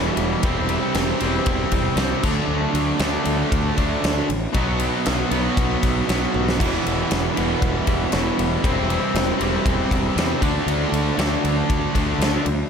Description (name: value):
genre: hard rock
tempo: 117 BPM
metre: 4/4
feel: straight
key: unclear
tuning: A4 = 439 Hz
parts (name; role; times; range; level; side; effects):
- cranked stack guitar; riff; 0.0-12.5 s; E2 to D4; -25 LUFS; right 10 dB; overdrive
- distorted electric guitar; riff; 0.0-12.5 s; B2 to F#4; -27 LUFS; equal; distortion
- tight distorted guitar; riff; 0.0-12.5 s; E2 to D4; -26 LUFS; left 12 dB; distortion
- fuzz fingered electric bass; bass; 0.0-12.6 s; E1 to E2; -25 LUFS; left 1 dB; overdrive
- huge arena drum kit; drums; 0.2-12.6 s; crash cymbal, kick drum, ride cymbal, snare drum, toms; -24 LUFS; equal; none
room: light reverb, small room ambience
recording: none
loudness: -18 LUFS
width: side -6 dB against mid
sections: 0.0-12.7 A section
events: drum fill 6.3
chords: 0.4 C/E; 2.2 D; 4.5 B; 6.6 Em; 8.6 C/E; 10.4 D